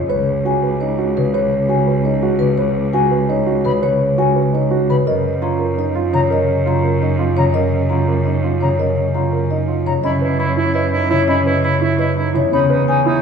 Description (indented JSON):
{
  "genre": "classical, minimalist pattern music",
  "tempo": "338 BPM (eighths)",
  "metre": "7/8",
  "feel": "straight",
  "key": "unclear",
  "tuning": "A4 = 440 Hz",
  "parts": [
    { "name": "marimba with soft mallets", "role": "melody", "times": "0.0-13.1 s", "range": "Cb5 to B5", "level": "-21 LUFS", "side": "left 7 dB", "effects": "none" },
    { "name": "concert harp", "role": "accompaniment", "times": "0.0-13.2 s", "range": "Db3 to Db4", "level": "-20 LUFS", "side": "equal", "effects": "none" },
    { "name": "dark concert grand piano", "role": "arpeggios", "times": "0.1-13.2 s", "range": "C#4 to Cb5", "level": "-20 LUFS", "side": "right 5 dB", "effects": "none" },
    { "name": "clear cello", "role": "bass", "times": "0.1-13.2 s", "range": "Db2 to Gb2", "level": "-21 LUFS", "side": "equal", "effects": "none" },
    { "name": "silver concert flute", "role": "arpeggios", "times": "3.7-12.6 s", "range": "Bb5 to B5", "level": "-26 LUFS", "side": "left 3 dB", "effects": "none" },
    { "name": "clear oboe", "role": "second line", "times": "10.0-13.2 s", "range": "D#4 to E4", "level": "-22 LUFS", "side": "right 4 dB", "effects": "none" }
  ],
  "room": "wet recital hall reverb, RT60 1.4 s",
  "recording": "recorded in a church or concert hall, nothing above 11.0 kHz",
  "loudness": "-14 LUFS",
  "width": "side -6 dB against mid",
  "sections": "0.0-10.0 A section; 10.0-13.2 B section",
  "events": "none",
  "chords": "0.1 Db7sus4; 5.1 Gbmaj7; 10.0 F#7sus4; 12.5 Emaj7"
}